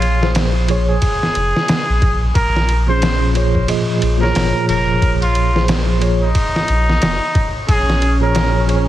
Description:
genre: trip hop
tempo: 90 BPM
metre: 4/4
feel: swing 60% on 16ths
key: Bb minor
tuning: A4 = 440 Hz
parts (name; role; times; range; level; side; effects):
- trumpet with straight mute; melody; 0.0-8.6 s; Eb4 to C5; -20 LUFS; equal; dub echo
- mellow tine electric piano; accompaniment; 0.0-8.9 s; Bb2 to Eb5; -19 LUFS; right 1 dB; medium stereo tremolo, tape echo
- warm sub bass; bass; 0.0-8.9 s; F1 to Bb1; -17 LUFS; equal; none
- trip hop sampler-style drum kit; drums; 0.0-8.9 s; hi-hat, kick drum, ride cymbal, snare drum; -19 LUFS; equal; studio reverb
- dark symphonic string section; sustained chords; 7.7-8.9 s; Db4; -23 LUFS; equal; none
room: light reverb, digital ambience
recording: heavily compressed radio sound, multiband compression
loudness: -13 LUFS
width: side -13 dB against mid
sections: 0.0-8.9 A section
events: none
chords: 0.0 Bbm7

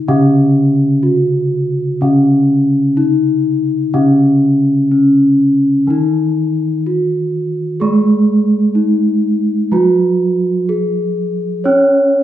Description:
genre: gamelan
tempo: 62 BPM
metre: 4/4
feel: straight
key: unclear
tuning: A4 = 440 Hz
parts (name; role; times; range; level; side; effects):
- gamelan-type bronze metallophone; melody; 0.0-12.2 s; Db4 to Db5; -13 LUFS; left 1 dB; none
- gamelan-type bronze metallophone; accompaniment; 0.0-12.2 s; Db3 to Db4; -16 LUFS; right 1 dB; none
room: wet large studio reverb, RT60 0.8 s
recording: band playing live in one room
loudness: -11 LUFS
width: side -12 dB against mid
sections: 0.0-12.2 A section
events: none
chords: none

